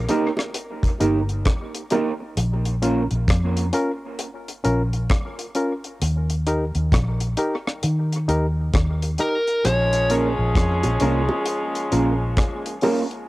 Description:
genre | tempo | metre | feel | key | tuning
dub reggae | 66 BPM | 4/4 | swing 62% on 16ths | Bb dorian | A4 = 440 Hz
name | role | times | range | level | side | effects
vintage muted fingered electric bass | bass | 0.0-12.3 s | G1 to Eb3 | -22 LUFS | equal | none
mellow electric guitar | accompaniment | 0.1-3.0, 10.1-13.0 s | Bb3 to Bb4 | -26 LUFS | right 4 dB | dub echo
barky reed electric piano | stabs | 0.1-13.0 s | Db4 to Bb4 | -27 LUFS | left 1 dB | overdrive, dub echo
deep reggae drum kit | drums | 0.1-13.3 s | hi-hat, kick drum, rim click | -23 LUFS | equal | cassette tape
bongos | percussion | 0.1-2.2, 9.6-13.1 s | none | -29 LUFS | right 2 dB | dub echo
fuzz lead guitar | melody | 9.2-10.1 s | Bb4 to Db5 | -25 LUFS | equal | distortion, cassette tape, dub echo
mellow horn section | second line | 9.6-12.8 s | F3 to Ab4 | -26 LUFS | left 1 dB | dub echo
room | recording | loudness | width
light reverb, small room ambience | home recording on cassette, faint mains hum | -19 LUFS | side -19 dB against mid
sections
0.0-13.3 A section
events
break 0.0-9.6; part muted 2.4-9.6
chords
0.0 Eb; 2.4 Bbm; 6.0 Eb; 9.6 Bbm

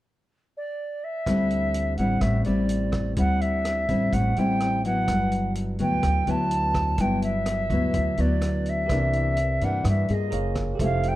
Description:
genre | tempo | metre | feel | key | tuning
bossa nova | 126 BPM | 4/4 | straight | unclear | A4 = 440 Hz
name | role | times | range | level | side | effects
silver concert flute | melody | 0.6-11.2 s | D5 to A5 | -27 LUFS | right 1 dB | none
nylon-string guitar | accompaniment | 1.3-11.2 s | G2 to Ab4 | -26 LUFS | left 1 dB | none
upright bass | bass | 1.3-11.2 s | F1 to G2 | -27 LUFS | equal | none
vintage drum kit | drums | 1.3-11.1 s | hi-hat, kick drum, rim click | -33 LUFS | equal | none
bell-like tine electric piano | accompaniment | 8.9-11.2 s | G4 to E#5 | -33 LUFS | right 6 dB | none
room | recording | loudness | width
light reverb | dark, warm production | -22 LUFS | side -15 dB against mid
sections
0.0-1.3 A section; 1.3-11.2 B section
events
none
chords
0.0 N.C.; 1.3 D9sus4; 5.1 Gmaj13; 8.9 C9; 10.3 F#maj9

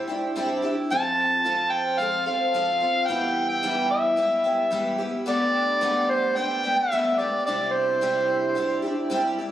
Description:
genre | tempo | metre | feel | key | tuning
rock | 110 BPM | 4/4 | straight | unclear | A4 = 440 Hz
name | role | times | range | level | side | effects
overdriven harmonica | melody | 0.0-8.8 s | C5 to A5 | -23 LUFS | equal | digital delay
picked twelve-string acoustic guitar | accompaniment | 0.0-9.5 s | G2 to A4 | -26 LUFS | equal | wide subtle chorus
room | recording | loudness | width
light reverb | recorded on a phone in the room, club reverb | -21 LUFS | side -12 dB against mid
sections
0.0-9.5 A section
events
none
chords
0.0 Cadd9; 0.9 F; 3.1 Em/G; 5.3 Gadd9; 7.5 Cadd9

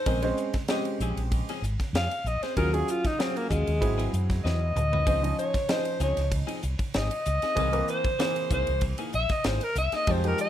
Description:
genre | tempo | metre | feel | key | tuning
electric jazz fusion | 96 BPM | 4/4 | straight | unclear | A4 = 440 Hz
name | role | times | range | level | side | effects
warm alto saxophone | melody | 0.0-10.5 s | Ab3 to F5 | -29 LUFS | equal | none
clean electric guitar | stabs | 0.0-10.3 s | Eb3 to B4 | -37 LUFS | left 4 dB | wide subtle chorus
warm baby grand piano | accompaniment | 0.1-10.5 s | E3 to Eb5 | -31 LUFS | equal | none
mellow fretless electric bass | bass | 0.1-10.3 s | Ab1 to Gb2 | -28 LUFS | equal | none
crisp fusion drum kit | drums | 0.1-10.5 s | hi-hat, kick drum, ride cymbal, snare drum, toms | -31 LUFS | equal | none
room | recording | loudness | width
light reverb | none | -24 LUFS | side -11 dB against mid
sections
0.0-10.5 A section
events
alto saxophone solo 0.0-10.5; drum fill 4.5-5.1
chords
0.1 Bbm9; 2.6 Ebm11; 3.8 Ab7alt; 5.1 Dbmaj9; 7.6 C7alt

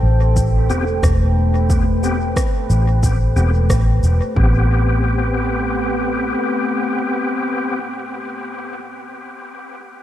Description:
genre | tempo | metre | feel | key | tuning
ambient dub | 90 BPM | 4/4 | swing 56% on 16ths | A minor | A4 = 440 Hz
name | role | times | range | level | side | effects
deep dark ambient pad | sustained chords | 0.0-7.8 s | A3 to G5 | -24 LUFS | equal | chorus, built-in reverb
vintage muted fingered electric bass | bass | 0.0-6.3 s | E1 to A1 | -16 LUFS | equal | tube saturation
electronic kick drum | drums | 0.4-4.5 s | none | -19 LUFS | equal | overdrive
electronic shaker and rim click | drums | 0.4-4.2 s | none | -29 LUFS | right 1 dB | overdrive, dub echo
bright tonewheel organ | stabs | 0.7-7.8 s | B3 to G4 | -23 LUFS | left 2 dB | chorus vibrato, fast rotary speaker, dub echo
room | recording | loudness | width
light reverb | none | -15 LUFS | side -12 dB against mid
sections
0.0-4.4 A section; 4.4-7.0 B section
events
none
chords
0.0 Am7

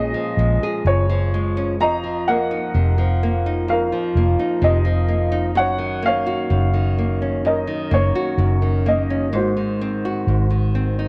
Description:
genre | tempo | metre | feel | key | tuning
acoustic folk-pop ballad | 64 BPM | 4/4 | straight | unclear | A4 = 438 Hz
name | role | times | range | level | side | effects
warm upright piano | melody | 0.0-11.1 s | Gb4 to Bb5 | -25 LUFS | equal | none
nylon-string guitar | accompaniment | 0.0-11.1 s | F2 to Ab4 | -25 LUFS | equal | none
vintage muted fingered electric bass | bass | 0.0-11.1 s | F1 to Bb1 | -22 LUFS | equal | none
room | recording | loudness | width
light reverb, studio ambience | none | -20 LUFS | mono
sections
0.0-11.1 A section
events
none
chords
0.0 Bbm7; 1.8 F7sus4; 5.6 Ebm7/Gb; 9.3 Ab7

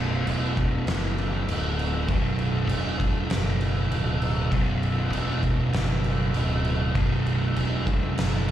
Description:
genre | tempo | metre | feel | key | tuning
stoner and doom metal | 99 BPM | 4/4 | straight | B minor | A4 = 441 Hz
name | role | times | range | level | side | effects
fuzz guitar | riff | 0.0-8.5 s | B1 to B2 | -27 LUFS | right 1 dB | distortion
fuzz fingered electric bass | bass | 0.0-8.5 s | B0 to F#1 | -27 LUFS | equal | overdrive
oversized low-tuned drum kit | drums | 0.3-8.5 s | crash cymbal, kick drum, snare drum | -28 LUFS | equal | none
room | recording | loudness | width
studio reverb | live gig heard through the venue's PA, club reverb | -22 LUFS | side -11 dB against mid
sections
0.0-8.5 A section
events
none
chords
0.0 Bm

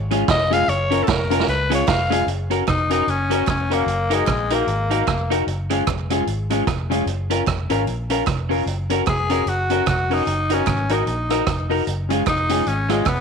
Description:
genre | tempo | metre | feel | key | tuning
ska | 150 BPM | 4/4 | swing 59% on 8ths | F# major | A4 = 440 Hz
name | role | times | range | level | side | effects
vintage muted fingered electric bass | bass | 0.0-13.2 s | E#1 to C#2 | -25 LUFS | equal | none
electric guitar at the edge of break-up | accompaniment | 0.1-13.1 s | G#3 to A#4 | -26 LUFS | right 13 dB | slapback echo
warm upright piano | stabs | 0.1-13.0 s | C#4 to A#4 | -24 LUFS | left 13 dB | none
street-band drum kit | drums | 0.1-13.2 s | hi-hat, kick drum, rim click, snare drum | -24 LUFS | right 6 dB | none
raspy alto saxophone | melody | 0.3-2.3 s | A4 to E#5 | -22 LUFS | left 2 dB | none
group handclap | percussion | 0.3-13.2 s | none | -37 LUFS | right 11 dB | none
raspy tenor saxophone | melody | 2.7-5.3, 9.1-13.2 s | G#3 to G#4 | -22 LUFS | left 2 dB | slapback echo
room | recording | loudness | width
moderate spring reverb, RT60 2.0 s, small room reverb | 1960s-style stereo with parts hard left and right | -18 LUFS | side -6 dB against mid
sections
0.0-2.3 A section; 2.3-13.2 B section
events
alto saxophone solo 0.0-2.3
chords
0.0 C#; 0.7 A#m/F#; 1.5 C#; 2.3 F#; 3.9 D#m/F#; 5.5 C#; 7.1 A#m; 8.7 F#; 10.3 D#m/F#; 11.9 C#

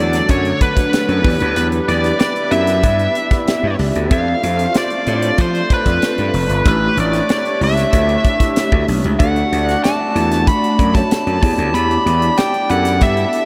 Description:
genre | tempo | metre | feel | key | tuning
polished 1980s jazz-funk pop | 94 BPM | 4/4 | straight | D major | A4 = 438 Hz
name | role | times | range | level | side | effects
nasal lead guitar with a parked wah | melody | 0.0-13.5 s | B4 to B5 | -21 LUFS | equal | overdrive, digital delay
clear horn section | second line | 0.0-13.5 s | F#3 to D5 | -30 LUFS | equal | digital delay
mellow tine electric piano | accompaniment | 0.0-13.5 s | A3 to E5 | -24 LUFS | equal | lush chorus
hollow soft pad | sustained chords | 0.0-13.5 s | D3 to G4 | -28 LUFS | equal | none
gritty slap bass | bass | 0.0-13.2 s | F1 to F3 | -20 LUFS | equal | overdrive
tight funk drum kit | drums | 0.1-13.5 s | hi-hat, kick drum, snare drum | -22 LUFS | equal | none
room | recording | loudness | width
wet huge ambient reverb, RT60 8.0 s | dreamy mix soaked in reverb | -16 LUFS | mono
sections
0.0-13.5 A section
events
none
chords
0.0 Dmaj7; 1.2 Em7; 4.1 F6; 6.7 A7sus4; 9.2 Dmaj7; 11.4 Em7

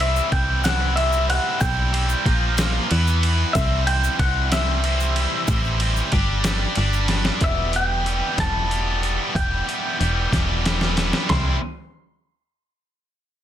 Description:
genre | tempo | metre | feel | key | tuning
indie rock | 62 BPM (dotted quarters) | 6/8 | straight | C major | A4 = 440 Hz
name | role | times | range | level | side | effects
twangy electric guitar | melody | 0.0-11.6 s | E5 to C6 | -24 LUFS | left 1 dB | slapback echo
heavy high-gain guitar | riff | 0.0-11.6 s | E2 to D5 | -24 LUFS | equal | distortion
slap-like FM bass | bass | 0.0-11.6 s | E1 to E2 | -22 LUFS | equal | none
boom bap sampler-style drum kit | drums | 0.0-11.4 s | hi-hat, kick drum, ride cymbal, snare drum, toms | -25 LUFS | equal | none
tube shaker | percussion | 0.2-7.1 s | none | -37 LUFS | left 10 dB | none
room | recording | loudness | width
light reverb | dense, heavily limited modern master | -18 LUFS | side -11 dB against mid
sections
0.0-7.4 A section; 7.4-11.3 B section; 11.3-13.2 C section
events
drum fill 7.1-7.4, 10.3-11.3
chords
0.0 C; 2.3 Bb5; 2.9 E5; 3.5 C; 6.1 G5; 7.4 Em; 11.3 C

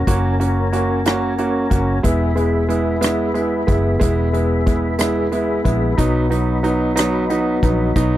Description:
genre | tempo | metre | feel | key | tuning
six-eight pop ballad | 61 BPM (dotted quarters) | 6/8 | straight | unclear | A4 = 439 Hz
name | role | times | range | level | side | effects
percussive tonewheel organ | sustained chords | 0.0-8.2 s | B3 to B5 | -24 LUFS | left 5 dB | chorus vibrato, slow rotary speaker
vintage muted fingered electric bass | bass | 0.0-8.2 s | E1 to B1 | -21 LUFS | left 1 dB | none
clear concert grand piano | accompaniment | 0.1-8.2 s | F#3 to F#4 | -19 LUFS | right 2 dB | none
unplugged drum kit | drums | 0.1-8.1 s | hi-hat, kick drum, rim click | -20 LUFS | equal | none
room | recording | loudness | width
little or no reverb | dry, close 1970s-style studio recording | -16 LUFS | side -13 dB against mid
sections
0.0-8.2 A section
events
none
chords
0.0 F#; 2.0 E; 6.0 B

